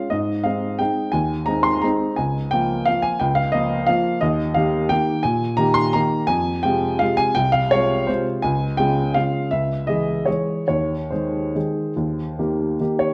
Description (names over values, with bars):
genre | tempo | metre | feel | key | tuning
classical, piano waltz | 136-189 BPM | 3/4 | rubato | Ab major | A4 = 439 Hz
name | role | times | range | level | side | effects
warm upright piano | solo | 0.0-13.1 s | C2 to C6 | -21 LUFS | equal | none
room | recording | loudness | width
moderate recital hall reverb, RT60 1.5 s | dark, warm production | -21 LUFS | mono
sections
0.0-13.1 A section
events
none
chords
0.1 Ab; 2.2 Bbm/Db; 4.2 Eb; 6.3 Fm; 8.4 Db; 9.5 Dbm; 10.7 Ab/Eb; 12.0 Eb